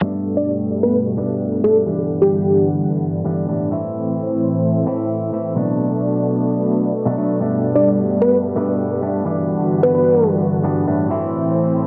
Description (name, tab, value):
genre	EDM, festival progressive house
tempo	130 BPM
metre	4/4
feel	straight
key	G major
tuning	A4 = 441 Hz
part	semi-hollow electric guitar	accompaniment	0.0-11.9 s	G2 to E4	-23 LUFS	equal	none
part	lush unison pad	sustained chords	0.0-11.9 s	G2 to F#5	-23 LUFS	equal	chorus
part	plucky unison lead	melody	0.4-2.7, 7.8-10.3 s	G4 to D5	-20 LUFS	equal	cassette tape, digital delay
part	electronic hi-hat	drums	7.4-11.9 s	none	-60 LUFS	equal	none
room	moderate digital room reverb, RT60 1.1 s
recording	low-pass filter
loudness	-18 LUFS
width	mono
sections	0.0-11.9 A section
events	filter sweep 0.0-11.9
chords	0.0 Gadd9; 1.9 Em7/G; 3.7 Am; 5.6 Bm7; 7.4 Gadd9; 9.3 Em7/G; 11.1 Am